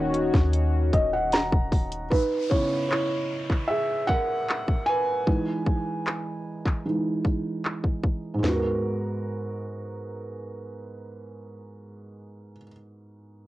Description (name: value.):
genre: contemporary R&B.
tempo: 76 BPM.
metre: 4/4.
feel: straight.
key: G# minor.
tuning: A4 = 439 Hz.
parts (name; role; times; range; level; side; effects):
felt-muted upright piano; accompaniment; 0.0-13.5 s; G#2 to A#5; -27 LUFS; right 1 dB; cassette tape.
warm analog pad; sustained chords; 0.0-2.1 s; D#3 to F#4; -29 LUFS; left 3 dB; chorus, sidechain pumping, cassette tape.
warm 808-style bass; bass; 0.0-2.1 s; D#1 to D#2; -26 LUFS; equal; none.
trap drum kit; drums; 0.1-8.6 s; handclaps, hi-hat, kick drum, snare drum, toms; -24 LUFS; equal; cassette tape.
downlifter; sound effects; 2.1-8.4 s; none; -43 LUFS; left 2 dB; none.
room: light reverb.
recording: home recording on cassette.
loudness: -23 LUFS.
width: side -16 dB against mid.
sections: 0.0-2.1 A section; 2.1-8.4 B section; 8.4-11.6 C section.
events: felt piano fill 0.5-2.1; felt piano solo 2.1-8.4.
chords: 0.0 D#m7; 2.1 C#m9; 5.3 Emaj7; 8.4 G#m9.